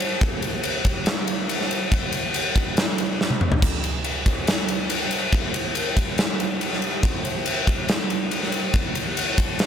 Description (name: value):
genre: rock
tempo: 141 BPM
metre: 4/4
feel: straight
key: none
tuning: none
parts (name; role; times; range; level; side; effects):
- huge arena drum kit; drums; 0.0-9.7 s; crash cymbal, kick drum, ride cymbal, snare drum, splash cymbal, toms; -20 LUFS; equal; none
room: light reverb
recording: none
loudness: -20 LUFS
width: side -8 dB against mid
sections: 0.0-9.7 A section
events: drum fill 3.2-3.6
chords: none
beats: | 0.21 0.64 1.07 1.50 | 1.92 2.35 2.77 3.20 | 3.63 4.05 4.48 4.90 | 5.33 5.76 6.18 6.61 | 7.04 7.46 7.89 8.32 | 8.74 9.17 9.60